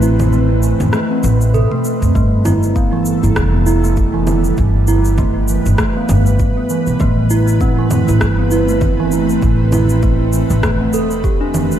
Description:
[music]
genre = organic downtempo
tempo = 99 BPM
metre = 4/4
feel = swing 57% on 16ths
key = unclear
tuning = A4 = 440 Hz
[part]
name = ethereal airy pad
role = sustained chords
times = 0.0-11.8 s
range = G3 to B4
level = -21 LUFS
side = left 1 dB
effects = ensemble chorus, built-in reverb, sidechain pumping
[part]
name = steel tongue drum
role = arpeggios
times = 0.0-11.6 s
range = E3 to A4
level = -17 LUFS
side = right 3 dB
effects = tape echo
[part]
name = upright bass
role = bass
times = 0.0-11.8 s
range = E1 to D2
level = -15 LUFS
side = equal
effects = sidechain pumping
[part]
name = afro-pop drum kit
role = drums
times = 0.0-11.8 s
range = congas, rim click, shaker, toms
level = -21 LUFS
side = equal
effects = overdrive
[part]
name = electronic kick drum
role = drums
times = 2.2-11.4 s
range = none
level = -18 LUFS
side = equal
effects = overdrive
[sound]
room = light reverb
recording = lossy compression artefacts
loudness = -12 LUFS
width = side -10 dB against mid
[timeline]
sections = 0.0-2.1 A section; 2.1-11.8 B section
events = break 0.0-2.1; drum fill 1.2-2.1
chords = 0.0 Amadd9; 2.1 Gadd9; 7.0 Amadd9

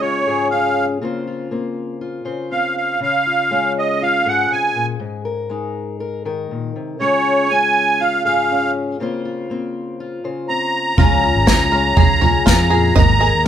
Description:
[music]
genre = indie folk with a building arrangement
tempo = 120 BPM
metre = 4/4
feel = straight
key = Db major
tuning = A4 = 440 Hz
[part]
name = musette accordion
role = melody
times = 0.0-13.4 s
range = Db5 to Bb5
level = -16 LUFS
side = right 2 dB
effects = none
[part]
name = fingerpicked old ladder-braced acoustic guitar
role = accompaniment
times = 0.0-13.5 s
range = Ab2 to C5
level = -22 LUFS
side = left 5 dB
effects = none
[part]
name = picked twelve-string acoustic guitar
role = accompaniment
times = 11.0-13.5 s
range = Db3 to Ab4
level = -25 LUFS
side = left 6 dB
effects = none
[part]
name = bluegrass banjo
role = arpeggios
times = 11.0-13.5 s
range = F4 to Eb5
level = -23 LUFS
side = right 4 dB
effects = none
[part]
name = fingered electric bass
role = bass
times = 11.0-13.5 s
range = Ab1 to F2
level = -19 LUFS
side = equal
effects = none
[part]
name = unplugged drum kit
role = drums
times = 11.0-13.1 s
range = kick drum, snare drum, toms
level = -14 LUFS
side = right 1 dB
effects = none
[sound]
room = light reverb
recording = band playing live in one room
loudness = -15 LUFS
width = side -9 dB against mid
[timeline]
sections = 0.0-11.0 A section; 11.0-13.5 B section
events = build-up 11.0-13.5; drum fill 11.0-13.5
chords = 0.0 Db; 1.0 Bbmadd9/Db; 3.0 Db; 5.0 Absus2; 7.0 Db; 9.0 Bbmadd9/Db; 11.0 Db; 13.0 Absus2

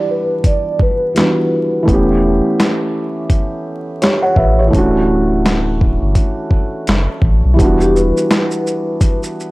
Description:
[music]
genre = lo-fi hip hop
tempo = 84 BPM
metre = 4/4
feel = swing 59% on 16ths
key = E dorian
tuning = A4 = 440 Hz
[part]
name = vibraphone with soft mallets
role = melody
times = 0.0-1.8, 7.8-9.2 s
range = G4 to D5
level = -18 LUFS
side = left 1 dB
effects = low-pass filter
[part]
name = felt-muted upright piano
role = accompaniment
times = 0.0-9.5 s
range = E3 to F#5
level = -16 LUFS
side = right 1 dB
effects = cassette tape, low-pass filter
[part]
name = dusty soul sampler-style drum kit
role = drums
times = 0.4-9.5 s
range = handclaps, hi-hat, kick drum, shaker, snare drum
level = -15 LUFS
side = equal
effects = overdrive
[part]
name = warm sub bass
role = bass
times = 1.9-8.1 s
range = D1 to B1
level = -16 LUFS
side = equal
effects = none
[sound]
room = digital ambience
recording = dry, gritty hardware recording, vinyl crackle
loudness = -12 LUFS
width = side -20 dB against mid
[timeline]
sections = 0.0-7.6 A section; 7.6-9.5 B section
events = filter sweep 0.0-7.6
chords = 0.0 Em9; 1.9 A7/E; 4.7 Dmaj9; 7.6 Em9

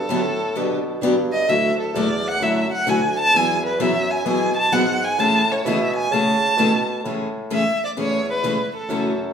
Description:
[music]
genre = acoustic string swing (jazz manouche)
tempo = 130 BPM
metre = 4/4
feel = swing 66% on 8ths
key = A major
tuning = A4 = 442 Hz
[part]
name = dark violin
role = melody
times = 0.0-9.2 s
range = A4 to A5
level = -20 LUFS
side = right 1 dB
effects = none
[part]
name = warm bassoon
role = bass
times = 0.0-9.3 s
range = D2 to C#3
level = -26 LUFS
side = equal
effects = none
[part]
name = picked steel-string acoustic guitar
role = accompaniment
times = 0.1-9.1 s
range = C#3 to G#4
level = -23 LUFS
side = left 2 dB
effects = none
[part]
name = picked steel-string acoustic guitar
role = accompaniment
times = 0.1-9.1 s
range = D3 to A4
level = -30 LUFS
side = right 4 dB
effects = none
[sound]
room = wet large studio reverb, RT60 1.1 s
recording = band playing live in one room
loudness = -18 LUFS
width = side -7 dB against mid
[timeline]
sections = 0.0-7.0 A section; 7.0-9.3 B section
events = violin solo 0.0-7.0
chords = 0.0 Gmaj7; 1.5 Dadd9; 3.3 Eadd9; 5.2 Amaj7

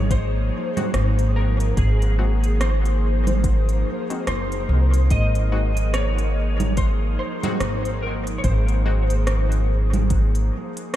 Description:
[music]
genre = ambient dub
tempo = 72 BPM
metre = 4/4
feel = swing 59% on 16ths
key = Ab mixolydian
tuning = A4 = 441 Hz
[part]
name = electric slide guitar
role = melody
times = 0.0-9.7 s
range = Ab4 to Eb5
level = -29 LUFS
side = left 2 dB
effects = ensemble chorus, dub echo
[part]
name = airy breathy pad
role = sustained chords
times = 0.0-11.0 s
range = F3 to Eb5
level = -30 LUFS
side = left 1 dB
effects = chorus
[part]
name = upright bass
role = bass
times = 0.0-10.5 s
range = Gb1 to C2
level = -20 LUFS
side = equal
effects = none
[part]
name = electronic kick drum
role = drums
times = 0.1-10.3 s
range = none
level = -23 LUFS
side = equal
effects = none
[part]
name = organic electronic drum kit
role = drums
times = 0.1-11.0 s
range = congas, hi-hat, rim click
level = -30 LUFS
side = right 2 dB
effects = overdrive, dub echo
[part]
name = filtered dub chord stab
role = stabs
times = 0.8-9.1 s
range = Ab3 to Gb4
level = -36 LUFS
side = left 4 dB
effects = chorus, dub echo
[sound]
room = light reverb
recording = none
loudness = -18 LUFS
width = side -13 dB against mid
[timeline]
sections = 0.0-11.0 A section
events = none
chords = 0.0 Ab7

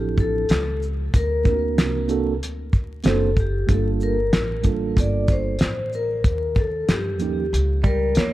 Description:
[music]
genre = hip hop, jazz-hop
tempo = 94 BPM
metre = 4/4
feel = swing 59% on 16ths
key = D minor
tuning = A4 = 441 Hz
[part]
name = vibraphone with soft mallets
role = melody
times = 0.0-8.3 s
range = G4 to D5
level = -26 LUFS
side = left 2 dB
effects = tape echo
[part]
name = mellow tine electric piano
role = accompaniment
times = 0.0-7.5 s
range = F3 to C5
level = -26 LUFS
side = right 7 dB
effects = none
[part]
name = upright bass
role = bass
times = 0.0-8.3 s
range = F#1 to G2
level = -25 LUFS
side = equal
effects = none
[part]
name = cloth-damped thuddy drum kit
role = drums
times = 0.2-8.3 s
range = hi-hat, kick drum, shaker, snare drum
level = -21 LUFS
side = equal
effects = none
[part]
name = clean electric guitar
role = second line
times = 7.8-8.3 s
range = G3 to Bb3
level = -27 LUFS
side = right 5 dB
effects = none
[sound]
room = studio ambience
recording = dark, warm production, vinyl crackle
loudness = -19 LUFS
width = side -15 dB against mid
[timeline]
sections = 0.0-8.3 A section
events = none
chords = 0.0 Dm7; 1.1 D7b13; 3.7 Gm9; 6.2 Eb7

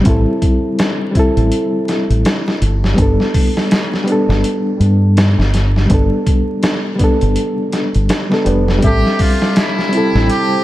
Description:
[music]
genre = trip hop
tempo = 82 BPM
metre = 4/4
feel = swing 60% on 16ths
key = unclear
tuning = A4 = 442 Hz
[part]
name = reed electric piano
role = accompaniment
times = 0.0-10.6 s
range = G3 to E5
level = -16 LUFS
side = equal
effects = harmonic tremolo, tape echo
[part]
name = deep dub fingered electric bass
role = bass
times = 0.0-10.3 s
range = F1 to G2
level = -14 LUFS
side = equal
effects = none
[part]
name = trip hop sampler-style drum kit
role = drums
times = 0.1-10.5 s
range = hi-hat, kick drum, snare drum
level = -16 LUFS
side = equal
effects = none
[part]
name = trumpet with metal mute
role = melody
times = 8.8-10.6 s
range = E4 to G4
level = -19 LUFS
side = equal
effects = tape echo
[part]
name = deep dark ambient pad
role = sustained chords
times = 9.4-10.6 s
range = C4 to A5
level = -23 LUFS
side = right 4 dB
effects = chorus, built-in reverb, vintage 12-bit sampler grit
[sound]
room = light reverb, digital ambience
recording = vinyl crackle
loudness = -12 LUFS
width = side -15 dB against mid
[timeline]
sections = 0.0-10.6 A section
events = none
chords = 0.0 Am7; 3.0 Gadd9; 8.8 Am7

